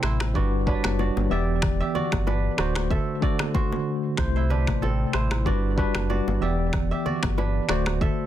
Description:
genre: afrobeats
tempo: 94 BPM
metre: 4/4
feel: swing 55% on 16ths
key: G major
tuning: A4 = 438 Hz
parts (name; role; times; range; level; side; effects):
- tine electric piano; accompaniment; 0.0-8.3 s; C3 to D5; -27 LUFS; left 1 dB; medium stereo tremolo
- kora; riff; 0.0-8.3 s; C4 to E5; -31 LUFS; right 5 dB; tape echo
- sub bass with octave; bass; 0.0-8.1 s; D1 to C2; -26 LUFS; equal; none
- afro-pop drum kit; drums; 0.0-8.2 s; finger snaps, kick drum, rim click; -27 LUFS; equal; vintage 12-bit sampler grit, soft clipping on snare
- bongos and congas; percussion; 0.2-8.2 s; none; -34 LUFS; left 5 dB; none
room: little or no reverb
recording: dense, heavily limited modern master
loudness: -22 LUFS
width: side -12 dB against mid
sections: 0.0-8.3 A section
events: break 0.0-8.3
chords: 0.4 Gmaj7; 1.3 Em7; 2.6 D7; 4.2 C6; 5.5 Gmaj7; 6.4 Em7; 7.7 D7

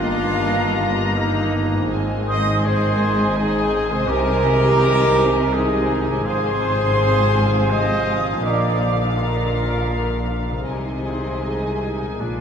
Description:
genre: classical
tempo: 82 BPM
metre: 3/4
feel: rubato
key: unclear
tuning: A4 = 442 Hz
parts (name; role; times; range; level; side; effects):
- muted studio violin section; melody; 0.0-12.4 s; F5 to Bb5; -30 LUFS; left 2 dB; none
- bright large flute ensemble; second line; 0.0-12.4 s; Eb5 to Eb6; -27 LUFS; right 3 dB; none
- mellow clarinet; second line; 0.0-12.4 s; Bb3 to C5; -29 LUFS; right 2 dB; none
- muted chamber violin section; second line; 0.0-12.4 s; D5 to F5; -33 LUFS; left 2 dB; none
- warm oboe; second line; 0.0-12.4 s; Bb3 to C5; -30 LUFS; left 4 dB; none
- muted chamber viola section; accompaniment; 0.0-12.4 s; Bb3 to Eb4; -34 LUFS; right 2 dB; none
- clear French horn section; sustained chords; 0.0-12.4 s; Eb4 to Eb5; -25 LUFS; equal; none
- mellow trombone section; sustained chords; 0.0-12.4 s; C3 to Bb3; -30 LUFS; equal; none
- concert harp; arpeggios; 0.0-12.4 s; G2 to F5; -31 LUFS; equal; none
- bright trumpet section; stabs; 0.0-12.4 s; Eb4 to Eb5; -28 LUFS; left 2 dB; none
- muted chamber cello section; bass; 0.0-12.4 s; G2 to C3; -24 LUFS; equal; none
- muted studio double bass section; bass; 0.0-12.4 s; G1 to C2; -25 LUFS; equal; none
room: wet cathedral reverb, RT60 5.8 s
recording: in a vast, echoing space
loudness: -17 LUFS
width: side -7 dB against mid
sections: 0.0-12.4 A section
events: none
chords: 0.0 Eb/G; 1.9 Ab; 4.1 Ab/C; 6.3 Fm/Ab; 8.4 Bb; 10.7 Ab/C

